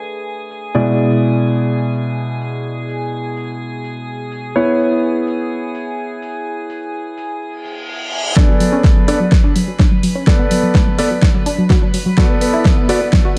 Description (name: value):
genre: progressive house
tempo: 126 BPM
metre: 4/4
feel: straight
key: B dorian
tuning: A4 = 440 Hz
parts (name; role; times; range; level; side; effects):
- warm concert grand piano; stabs; 0.0-13.0 s; B2 to D5; -20 LUFS; equal; sidechain pumping, low-pass filter, tape echo
- deep house drum kit; drums; 0.0-13.2 s; hi-hat, shaker, snare drum; -23 LUFS; equal; overdrive, sidechain pumping on perc, low-pass filter on perc, sidechain pumping on hats, low-pass filter on hats, low-pass filter on snare
- drifting glass-harmonics texture; texture; 0.0-13.4 s; G#4 to B5; -30 LUFS; equal; chorus, built-in reverb, sidechain pumping
- reverse cymbal; sound effects; 7.7-8.4 s; none; -25 LUFS; equal; none
- analog pluck; arpeggios; 8.4-13.3 s; F#3 to F#4; -21 LUFS; equal; chorus, cassette tape, sidechain pumping, tape echo
- electronic kick drum; drums; 8.4-13.2 s; none; -15 LUFS; equal; overdrive
room: moderate lush hall reverb, RT60 1.9 s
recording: dark, warm production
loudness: -15 LUFS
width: mono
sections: 0.0-8.4 A section; 8.4-13.4 B section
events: reverse cymbal 7.7-8.4; build-up 8.4-13.4; drum fill 8.4-13.4; filter sweep on synth pluck 8.4-13.4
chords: 0.0 Bm7; 0.7 E7/B; 4.6 C#m7; 8.4 Bm7